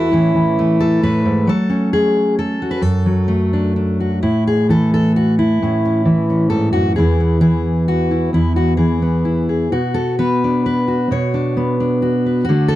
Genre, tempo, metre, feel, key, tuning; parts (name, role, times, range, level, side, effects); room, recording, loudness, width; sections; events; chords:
folk, solo fingerstyle acoustic guitar; 132 BPM; 3/4; rubato; A major; A4 = 441 Hz
fingerpicked steel-string acoustic guitar; solo; 0.0-12.8 s; E2 to C#5; -14 LUFS; equal
light reverb; dry, close 1970s-style studio recording; -14 LUFS; side -15 dB against mid
0.0-4.2 A section; 4.2-12.8 B section
0.1 Aadd9; 1.5 F#madd9; 2.8 F#m; 4.2 A; 7.0 E; 9.7 Bmadd9